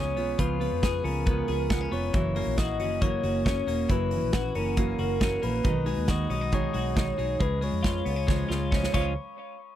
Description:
jangly indie pop; 137 BPM; 4/4; straight; Db mixolydian; A4 = 440 Hz
hollow clarinet-like synth lead; melody; 0.0-9.1 s; Bb4 to Eb5; -32 LUFS; left 1 dB; chorus, phaser, tape echo
glockenspiel with soft plastic mallets; second line; 0.0-9.1 s; Bb5 to Eb6; -40 LUFS; left 8 dB
fingerpicked steel-string acoustic guitar; accompaniment; 0.0-9.1 s; Gb2 to Gb4; -33 LUFS; right 7 dB
twelve-string electric guitar; arpeggios; 0.0-9.1 s; Eb3 to Ab4; -32 LUFS; left 5 dB; tape echo
vintage muted fingered electric bass; bass; 0.0-9.2 s; Fb1 to F2; -31 LUFS; equal
modern studio drum kit; drums; 0.2-9.0 s; crash cymbal, hi-hat, kick drum, snare drum; -28 LUFS; equal
little or no reverb; dry, close 1970s-style studio recording; -24 LUFS; side -12 dB against mid
0.0-9.2 A section
drum fill 8.3-9.2
0.0 Db7; 2.1 Gb7; 5.7 Cb6; 7.4 Db; 9.2 N.C.
| 0.39 0.83 1.26 1.70 | 2.14 2.58 3.02 3.46 | 3.90 4.33 4.77 5.21 | 5.65 6.09 6.53 6.97 | 7.41 7.85 8.29 8.73

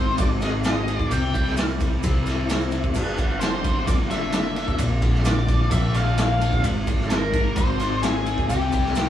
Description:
psychedelic rock; 130 BPM; 4/4; straight; A4 = 441 Hz
octave-fuzz lead guitar; melody; 0.0-9.1 s; G4 to G5; -27 LUFS; left 1 dB; distortion
raw garage guitar; riff; 0.0-9.1 s; G2 to Ab4; -28 LUFS; left 2 dB; overdrive, tremolo
growling fingered electric bass; bass; 0.0-9.1 s; G1 to C2; -25 LUFS; equal; overdrive
raw garage drum kit; drums; 0.2-9.1 s; crash cymbal, kick drum, ride cymbal, snare drum; -23 LUFS; equal
maracas; percussion; 0.2-9.1 s; -44 LUFS; right 5 dB
moderate stone room reverb, RT60 1.0 s; band playing live in one room, small room ambience; -20 LUFS; side -11 dB against mid
0.0-9.1 A section
0.0 Ab; 1.1 C; 2.9 Gm; 4.8 Bb; 6.6 Ab; 8.5 C5
0.17 0.63 | 1.09 1.56 2.02 2.48 | 2.94 3.41 3.87 4.33 | 4.79 5.26 5.72 6.18 | 6.64 7.11 7.57 8.03 | 8.49 8.95

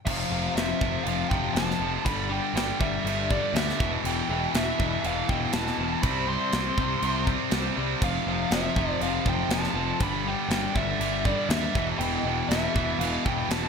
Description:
hard rock; 120 BPM; 4/4; straight; A4 = 440 Hz
nasal lead guitar with a parked wah; melody; 0.1-13.7 s; D5 to C6; -31 LUFS; equal; overdrive
cranked stack guitar; riff; 0.1-13.7 s; E2 to C4; -32 LUFS; left 11 dB; overdrive, ensemble chorus
distorted electric guitar; riff; 0.1-13.7 s; E2 to C4; -33 LUFS; left 1 dB; distortion
heavy high-gain guitar; riff; 0.1-13.7 s; E2 to C4; -31 LUFS; right 14 dB; distortion
growling picked electric bass; bass; 0.1-13.7 s; E1 to Eb2; -32 LUFS; equal; overdrive
tight metal drum kit; drums; 0.1-13.6 s; crash cymbal, kick drum, snare drum; -30 LUFS; equal; gated reverb
moderate plate reverb, RT60 1.2 s, small room ambience; bright 1980s-style digital production; -24 LUFS; side -6 dB against mid
0.1-13.7 A section
0.1 F; 2.1 G5; 3.8 Em; 6.0 C5; 8.0 F; 10.0 G5; 11.8 Em
| 0.07 0.56 1.06 1.56 | 2.06 2.55 3.05 3.55 | 4.04 4.54 5.04 5.54 | 6.03 6.53 7.03 7.53 | 8.03 8.52 9.02 9.52 | 10.02 10.52 11.02 11.52 | 12.02 12.51 13.01 13.51

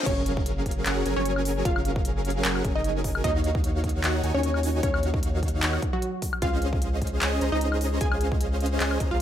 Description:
future bass; 151 BPM; 4/4; swing 54% on 16ths, half-time; A4 = 440 Hz
supersaw chords; riff; 0.0-9.2 s; Eb3 to Bb5; -29 LUFS; equal; sidechain pumping
reverse cymbal and sub drop; sound effects; 0.0-1.7 s; -39 LUFS; left 3 dB
wide unison pluck; melody; 0.1-9.2 s; Gb3 to Ab5; -30 LUFS; equal; sidechain pumping, dub echo
saturated sub bass; bass; 0.1-9.2 s; Gb1 to Eb2; -28 LUFS; equal; sidechain pumping
electronic kick drum; drums; 0.1-9.1 s; -28 LUFS; equal
trap drum kit; drums; 0.1-9.1 s; crash cymbal, handclaps, hi-hat, woodblock; -30 LUFS; left 2 dB
light reverb; high-pass filter; -23 LUFS; side -10 dB against mid
0.1-9.2 A section
drop 0.1-9.2; impact 0.1-1.7
0.1 Gbmaj7; 3.2 Ebm7; 6.4 Dbmaj7
| 0.06 0.46 0.86 1.25 | 1.65 2.05 2.45 2.85 | 3.24 3.64 4.04 4.43 | 4.83 5.23 5.63 6.02 | 6.42 6.82 7.21 7.61 | 8.01 8.41 8.80 9.20

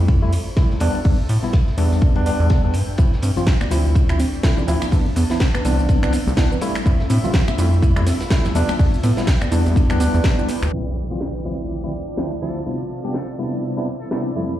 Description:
deep house; 124 BPM; 4/4; swing 58% on 16ths; D dorian; A4 = 443 Hz
tine electric piano; stabs; 0.0-14.5 s; D2 to G4; -24 LUFS; equal; overdrive, fast stereo tremolo, vintage 12-bit sampler grit, sidechain pumping, digital delay
rubbery square bass; bass; 0.0-10.7 s; C2 to A2; -18 LUFS; equal; sidechain pumping
granular cloud pad; texture; 0.0-14.6 s; C4 to B5; -30 LUFS; left 1 dB; built-in reverb, sidechain pumping
crunchy breakbeat drum kit; drums; 0.1-10.6 s; hi-hat, ride cymbal, snare drum; -37 LUFS; equal; sidechain pumping on cymbals, high-pass filter on cymbals, sidechain pumping on hats, high-pass filter on hats, high-pass filter on snare, high-pass filter on room
electronic kick drum; drums; 0.1-10.4 s; -16 LUFS; equal
house drum kit; drums; 0.3-14.2 s; finger snaps, hi-hat, shaker, snare drum; -28 LUFS; equal
soft round pluck; arpeggios; 3.2-10.5 s; B3 to F5; -28 LUFS; right 4 dB; chorus, sidechain pumping, tape echo
congas; percussion; 3.4-10.6 s; -29 LUFS; left 1 dB
impact; sound effects; 10.7-12.7 s; -30 LUFS; equal
trumpet with metal mute; melody; 12.4-14.2 s; A4; -45 LUFS; left 1 dB; digital delay
small room ambience; played on a big sound system in a bare room, large studio reverb, vinyl crackle, low-pass filter; -16 LUFS; side -13 dB against mid
0.0-10.7 A section; 10.7-14.6 B section
fade-in on ambient pad 0.0-10.7; impact 10.7-12.7; filter sweep 10.7-14.6
0.0 Fmaj7; 0.8 Em7; 3.0 Dm7; 4.9 Cmaj9; 6.6 Fmaj7; 8.6 Em7; 10.7 Dm7; 12.7 Cmaj9
0.08 0.57 | 1.05 1.53 2.02 2.50 | 2.98 3.47 3.95 4.44 | 4.92 5.41 5.89 6.37 | 6.86 7.34 7.82 8.31 | 8.79 9.28 9.76 10.24 | 10.73 11.21 11.70 12.18 | 12.66 13.15 13.63 14.12

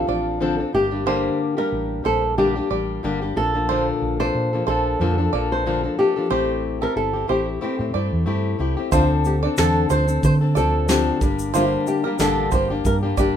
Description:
acoustic pop; 92 BPM; 4/4; swing 55% on 16ths; D minor; A4 = 440 Hz
flamenco guitar; melody; 0.0-13.4 s; C4 to C5; -23 LUFS; equal
fingerpicked plugged-in steel-string acoustic guitar; accompaniment; 0.0-13.4 s; G2 to A4; -23 LUFS; left 5 dB
hollow-body short-scale fingered electric bass; bass; 0.0-13.4 s; G1 to D3; -24 LUFS; right 1 dB
bluegrass banjo; arpeggios; 0.1-13.4 s; A4 to D5; -26 LUFS; right 6 dB
soft brush drum kit; drums; 8.9-13.3 s; kick drum, shaker, snare drum; -24 LUFS; right 1 dB
light reverb; minimal, uncompressed stereo recording; -18 LUFS; side -9 dB against mid
0.0-8.9 A section; 8.9-13.4 B section
0.0 Dm7; 0.7 Gm; 3.4 Bbmaj7; 6.3 Am7; 8.9 Dm7; 11.2 Gm
0.41 | 1.07 1.72 2.38 3.03 | 3.69 4.34 5.00 5.65 | 6.31 6.96 7.62 8.27 | 8.93 9.58 10.23 10.89 | 11.54 12.20 12.85

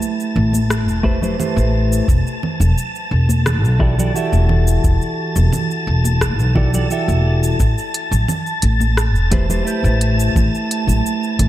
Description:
sunset chillout; 87 BPM; 4/4; straight; A dorian; A4 = 440 Hz
clean electric guitar; accompaniment; 0.0-11.5 s; E3 to E5; -21 LUFS; moving between left 5 dB and right 4 dB; auto-pan, ping-pong delay
smooth R&B drum kit; drums; 0.0-11.5 s; congas, hi-hat, rim click, shaker; -24 LUFS; right 2 dB
wind-like tuned noise texture; texture; 0.0-11.5 s; A5 to A6; -26 LUFS; left 1 dB; built-in reverb, lush chorus
upright bass; bass; 0.4-11.5 s; E1 to B1; -16 LUFS; equal
congas; percussion; 0.5-11.0 s; -28 LUFS; left 2 dB
electronic kick drum; drums; 1.0-10.5 s; -18 LUFS; equal; overdrive
light reverb; -14 LUFS; side -14 dB against mid
0.0-11.5 A section
0.0 Am7; 2.1 Emadd9; 7.6 Am7
0.01 0.70 1.39 | 2.08 2.77 3.46 4.15 | 4.84 5.53 6.22 6.91 | 7.60 8.29 8.98 9.67 | 10.36 11.05

